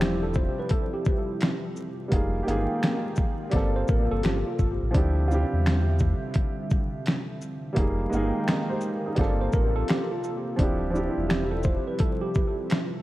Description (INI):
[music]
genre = lo-fi hip hop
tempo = 85 BPM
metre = 4/4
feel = swing 65% on 16ths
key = unclear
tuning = A4 = 440 Hz
[part]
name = tine electric piano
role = second line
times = 0.0-4.9, 9.2-13.0 s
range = F4 to D5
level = -33 LUFS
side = left 1 dB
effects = overdrive, fast stereo tremolo, low-pass filter, dub echo
[part]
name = warm upright piano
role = accompaniment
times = 0.0-13.0 s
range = F3 to Eb5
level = -30 LUFS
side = right 1 dB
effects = cassette tape, low-pass filter, dub echo
[part]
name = dark analog pad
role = sustained chords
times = 0.0-13.0 s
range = C3 to G5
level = -33 LUFS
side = equal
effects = chorus, low-pass filter
[part]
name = sub bass with octave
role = bass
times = 0.0-11.8 s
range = D1 to E2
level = -26 LUFS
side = equal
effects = none
[part]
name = dusty soul sampler-style drum kit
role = drums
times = 0.0-12.9 s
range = finger snaps, hi-hat, kick drum, shaker, snare drum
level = -26 LUFS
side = equal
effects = overdrive
[sound]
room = light reverb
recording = echo-heavy mix, vinyl crackle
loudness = -23 LUFS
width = side -16 dB against mid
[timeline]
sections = 0.0-13.0 A section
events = none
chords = 0.0 Dm11; 2.1 Fm11; 3.5 Gm11; 4.9 Dm11; 7.8 Fm11; 9.2 Gm11; 10.6 Dm11